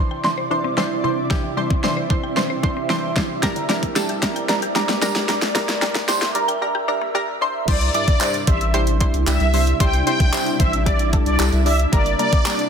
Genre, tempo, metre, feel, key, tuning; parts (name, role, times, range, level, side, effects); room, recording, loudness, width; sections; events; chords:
dance-pop; 113 BPM; 4/4; straight; C major; A4 = 441 Hz
punchy chord stab; accompaniment; 0.0-12.7 s; E3 to D5; -23 LUFS; right 1 dB; chorus, phaser, sidechain pumping
shimmering ambient pad; sustained chords; 0.1-12.7 s; G2 to E5; -26 LUFS; right 1 dB; chorus, built-in reverb, sidechain pumping
mallet-like synth pluck; arpeggios; 0.1-7.5 s; G2 to G5; -30 LUFS; left 8 dB; chorus, sidechain pumping, tape echo
pop drum kit; drums; 0.2-12.7 s; crash cymbal, handclaps, hi-hat, kick drum, snare drum; -21 LUFS; equal; overdrive
tambourine; percussion; 4.0-12.6 s; -33 LUFS; right 5 dB
filtered supersaw swell; melody; 7.7-12.6 s; D5 to G5; -23 LUFS; equal; phaser, sidechain pumping, tape echo
round analog bass; bass; 7.7-12.1 s; G1 to C2; -20 LUFS; equal; sidechain pumping
light reverb; dense, heavily limited modern master, high-pass filter; -17 LUFS; side -7 dB against mid
0.0-7.7 A section; 7.7-12.7 B section
build-up 0.0-7.7; drum fill 0.0-6.6; filter sweep 0.0-7.7; break 6.6-7.7; drop 7.7-12.7
0.0 Cadd9; 3.4 Gm; 7.4 Cadd9; 11.9 Gm